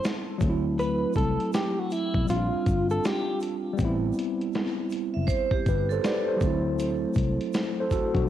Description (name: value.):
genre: lo-fi hip hop.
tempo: 80 BPM.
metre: 4/4.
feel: swing 64% on 16ths.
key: unclear.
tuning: A4 = 441 Hz.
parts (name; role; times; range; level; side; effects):
clean electric guitar; melody; 0.0-3.4 s; E4 to B4; -30 LUFS; equal; cassette tape, tape echo.
tine electric piano; accompaniment; 0.0-8.3 s; F3 to D5; -28 LUFS; equal; slow stereo tremolo.
dusty soul sampler-style drum kit; drums; 0.0-8.3 s; hi-hat, kick drum, snare drum; -29 LUFS; equal; cassette tape.
tube shaker; percussion; 0.0-8.1 s; none; -55 LUFS; right 13 dB; none.
vintage muted fingered electric bass; bass; 0.4-8.3 s; F#1 to D2; -28 LUFS; equal; none.
vibraphone with hard mallets; second line; 5.1-6.4 s; G4 to E5; -32 LUFS; right 8 dB; tape echo.
room: light reverb.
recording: home recording on cassette.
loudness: -24 LUFS.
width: side -11 dB against mid.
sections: 0.0-8.3 A section.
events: none.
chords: 0.4 D9; 2.3 Bb6; 3.8 Am7; 6.4 D9.